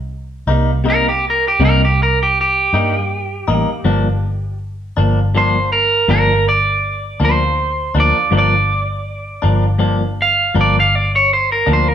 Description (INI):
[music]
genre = slow blues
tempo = 54 BPM (dotted quarters)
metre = 12/8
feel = straight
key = G minor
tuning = A4 = 442 Hz
[part]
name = vintage muted fingered electric bass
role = bass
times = 0.0-11.9 s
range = G1 to G2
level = -18 LUFS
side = equal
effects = none
[part]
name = clean electric guitar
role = accompaniment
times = 0.5-11.9 s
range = G2 to Eb4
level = -19 LUFS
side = left 2 dB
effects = harmonic tremolo
[part]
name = electric guitar through a small old amp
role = melody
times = 0.9-11.9 s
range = G4 to F5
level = -15 LUFS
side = right 2 dB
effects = none
[sound]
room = moderate large studio reverb, RT60 1.2 s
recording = band playing live in one room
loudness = -13 LUFS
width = side -9 dB against mid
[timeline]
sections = 0.0-11.9 A section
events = clean electric guitar solo 0.0-11.9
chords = 0.0 Cm7; 3.8 Gm7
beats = 0.48 1.60 2.72 | 3.84 4.96 6.08 7.20 | 8.31 9.43 10.54 11.66